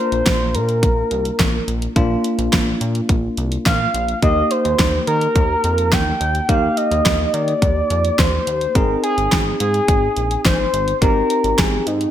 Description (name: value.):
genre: synth-pop.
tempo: 106 BPM.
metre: 4/4.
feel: straight.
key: Eb major.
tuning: A4 = 435 Hz.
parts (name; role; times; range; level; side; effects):
expressive synth lead; melody; 0.0-12.1 s; Eb4 to G5; -19 LUFS; equal; chorus.
bell-like tine electric piano; accompaniment; 0.0-12.1 s; Bb3 to Ab4; -24 LUFS; left 1 dB; medium stereo tremolo.
chorused synth bass; bass; 0.1-12.1 s; Ab1 to Eb3; -22 LUFS; equal; none.
pop drum kit; drums; 0.1-12.1 s; hi-hat, kick drum, snare drum; -18 LUFS; equal; gated reverb.
room: moderate lush hall reverb, RT60 1.7 s.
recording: bright 1980s-style digital production.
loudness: -15 LUFS.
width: side -11 dB against mid.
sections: 0.0-12.1 A section.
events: none.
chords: 0.0 Bb; 4.2 Eb; 8.8 Ab.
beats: 0.26 0.83 1.40 | 1.96 2.53 3.09 3.66 | 4.23 4.79 5.36 5.92 | 6.49 7.06 7.62 8.19 | 8.75 9.32 9.89 10.45 | 11.02 11.58.